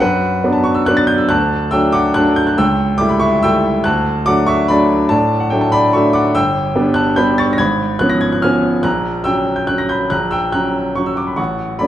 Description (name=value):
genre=classical, piano waltz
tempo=142 BPM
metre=3/4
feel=uneven beats, rubato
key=unclear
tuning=A4 = 441 Hz
part: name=clear baby grand piano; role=solo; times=0.0-11.9 s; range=G1 to A#6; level=-13 LUFS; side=equal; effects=none
room=moderate recital hall reverb, RT60 1.5 s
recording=dark, warm production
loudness=-13 LUFS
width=side -12 dB against mid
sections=0.0-11.9 A section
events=none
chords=0.0 Bm; 1.3 D; 2.6 A7/C#; 3.9 D; 6.4 G; 7.6 C#7/G#; 8.8 F#/A#